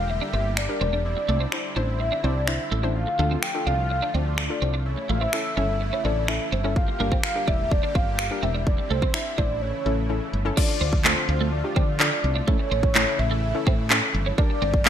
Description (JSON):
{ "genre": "dance-pop", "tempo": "126 BPM", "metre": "4/4", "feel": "straight", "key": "D minor", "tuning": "A4 = 440 Hz", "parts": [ { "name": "warm velvety synth lead", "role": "melody", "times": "0.0-14.9 s", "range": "C5 to G5", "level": "-28 LUFS", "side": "equal", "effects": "chorus, tremolo" }, { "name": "hollow square pluck", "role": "accompaniment", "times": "0.0-14.9 s", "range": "C#4 to C5", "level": "-32 LUFS", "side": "left 3 dB", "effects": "chorus, sidechain pumping" }, { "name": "supersaw chords", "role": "sustained chords", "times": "0.0-14.9 s", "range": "C#3 to G4", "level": "-34 LUFS", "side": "equal", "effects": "analog chorus, sidechain pumping" }, { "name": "woody fretless electric bass", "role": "bass", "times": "0.0-14.9 s", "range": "E1 to D3", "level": "-26 LUFS", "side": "equal", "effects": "sidechain pumping" }, { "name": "twelve-string electric guitar", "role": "riff", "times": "0.1-14.9 s", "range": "A3 to D4", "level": "-31 LUFS", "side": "right 5 dB", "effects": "ensemble chorus" }, { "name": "house drum kit", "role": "drums", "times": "0.6-14.9 s", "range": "crash cymbal, finger snaps, handclaps, kick drum", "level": "-22 LUFS", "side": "equal", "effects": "gated reverb" } ], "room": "light reverb, digital ambience", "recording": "bright 1980s-style digital production", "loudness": "-21 LUFS", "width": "side -10 dB against mid", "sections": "0.0-10.6 A section; 10.6-14.9 B section", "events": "silent gap 9.6-10.6", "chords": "0.0 Gm; 1.0 Cadd9; 3.0 Dm; 4.9 A; 6.8 Gm; 8.7 Cadd9; 9.6 A; 10.6 Dm; 12.5 A; 14.4 Gm" }